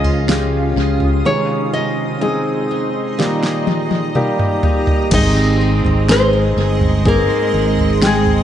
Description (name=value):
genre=pop ballad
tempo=62 BPM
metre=4/4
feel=straight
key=Ab major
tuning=A4 = 440 Hz
part: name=nylon-string guitar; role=melody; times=0.0-8.4 s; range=Ab3 to Eb5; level=-19 LUFS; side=left 1 dB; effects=tape echo
part: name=dark baby grand piano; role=accompaniment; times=0.0-8.4 s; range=Ab2 to G5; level=-19 LUFS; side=left 1 dB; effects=tape echo
part: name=granular cloud pad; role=sustained chords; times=0.0-8.4 s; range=Db4 to Eb6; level=-24 LUFS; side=equal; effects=built-in reverb
part: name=picked steel-string acoustic guitar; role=arpeggios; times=0.0-8.4 s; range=Ab2 to Ab4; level=-26 LUFS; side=right 6 dB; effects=none
part: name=fingered electric bass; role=bass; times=0.0-8.4 s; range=G1 to Db2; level=-17 LUFS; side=equal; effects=none
part: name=smooth R&B drum kit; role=drums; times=0.0-8.4 s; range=crash cymbal, kick drum, snare drum, toms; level=-19 LUFS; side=equal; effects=tape echo
part: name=warm studio cello section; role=second line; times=5.1-8.4 s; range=Ab3 to C4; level=-23 LUFS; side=right 4 dB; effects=none
room=light reverb, studio reverb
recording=echo-heavy mix, nothing above 10.7 kHz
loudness=-13 LUFS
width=side -10 dB against mid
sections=0.0-5.1 A section; 5.1-8.4 B section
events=drum fill 3.2-5.1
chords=0.0 Db; 1.3 Ab; 3.2 Eb; 5.1 Ab